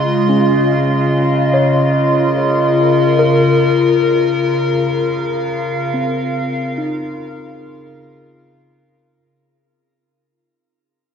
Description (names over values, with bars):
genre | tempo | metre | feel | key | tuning
ambient | free time | none | none | unclear | A4 = 435 Hz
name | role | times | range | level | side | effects
warbly tape-like pad | sustained chords | 0.0-9.2 s | Db3 to C6 | -14 LUFS | left 1 dB | chorus, built-in reverb, phaser, shimmer reverb
overdriven tine electric piano | arpeggios | 0.0-9.2 s | C4 to Db5 | -20 LUFS | right 1 dB | tape echo, shimmer reverb
room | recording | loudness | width
wet cathedral reverb, RT60 5.4 s | nothing above 7.7 kHz | -13 LUFS | side -7 dB against mid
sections
0.0-9.2 A section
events
fade-in on tine electric piano 0.0-9.2; fade-out 3.2-9.2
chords
0.3 Bbm/Db